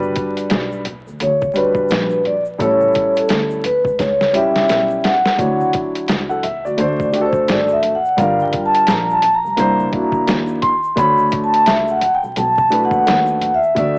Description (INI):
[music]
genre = hip hop, jazz-hop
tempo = 86 BPM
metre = 4/4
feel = swing 60% on 16ths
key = D major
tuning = A4 = 440 Hz
[part]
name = dark baby grand piano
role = accompaniment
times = 0.0-14.0 s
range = F#3 to F#5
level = -20 LUFS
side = equal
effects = cassette tape
[part]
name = rich double bass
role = bass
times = 0.0-14.0 s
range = G1 to Eb2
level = -25 LUFS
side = equal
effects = transformer saturation
[part]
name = congas and egg shaker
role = percussion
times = 0.0-14.0 s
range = none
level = -37 LUFS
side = equal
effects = none
[part]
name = lo-fi sampler-style drum kit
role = drums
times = 0.2-14.0 s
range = hi-hat, kick drum, snare drum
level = -21 LUFS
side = equal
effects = cassette tape
[part]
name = vibraphone with soft mallets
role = melody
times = 1.2-14.0 s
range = A4 to C6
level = -15 LUFS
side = equal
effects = cassette tape
[sound]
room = light reverb, studio ambience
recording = home recording on cassette, vinyl crackle, small speaker sound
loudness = -13 LUFS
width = side -31 dB against mid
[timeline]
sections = 0.0-14.0 A section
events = vibraphone solo 0.0-14.0; drum fill 4.0-5.4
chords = 0.0 Gmaj7; 2.6 A7; 5.4 Dmaj9; 6.8 D7; 8.2 Gm7; 9.6 C9; 11.0 Dmaj7